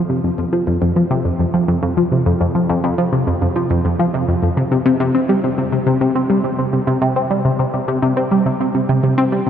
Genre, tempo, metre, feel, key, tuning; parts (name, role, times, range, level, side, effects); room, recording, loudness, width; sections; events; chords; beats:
ambient; 104 BPM; 4/4; straight; A4 = 441 Hz
tight sequenced synth; solo; 0.1-9.5 s; F2 to C4; -14 LUFS; equal; chorus, phaser, ping-pong delay
wet huge ambient reverb, RT60 7.2 s; worn, warbling old tape, cassette tape, warbly pitch drift; -14 LUFS; side -9 dB against mid
0.0-9.5 A section
0.53 1.11 1.68 | 2.26 2.84 3.41 3.99 | 4.57 5.14 5.72 6.30 | 6.88 7.45 8.03 8.61 | 9.18